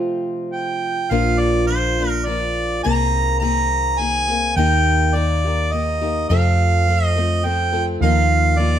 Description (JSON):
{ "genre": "acoustic folk duo or small band", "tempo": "104 BPM", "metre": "3/4", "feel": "straight", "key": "Bb major", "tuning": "A4 = 440 Hz", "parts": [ { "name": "picked steel-string acoustic guitar", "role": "accompaniment", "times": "0.0-8.8 s", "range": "F2 to A4", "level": "-23 LUFS", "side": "left 4 dB", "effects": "none" }, { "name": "warm harmonica", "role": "melody", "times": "0.5-8.8 s", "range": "C5 to Bb5", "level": "-20 LUFS", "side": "right 2 dB", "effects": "slapback echo" }, { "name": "hollow-body short-scale fingered electric bass", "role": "bass", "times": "1.1-8.8 s", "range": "Bb1 to F2", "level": "-19 LUFS", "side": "equal", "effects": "none" }, { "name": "felt-muted upright piano", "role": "arpeggios", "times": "8.0-8.8 s", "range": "F3 to Bb3", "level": "-24 LUFS", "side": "right 4 dB", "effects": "none" } ], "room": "little or no reverb", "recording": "close, detailed microphones", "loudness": "-16 LUFS", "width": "side -10 dB against mid", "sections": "0.0-1.1 A section; 1.1-8.8 B section", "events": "none", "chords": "0.0 F; 1.1 Bb; 2.8 Abadd9/C; 4.6 Eb; 6.3 F; 8.0 Ebsus2" }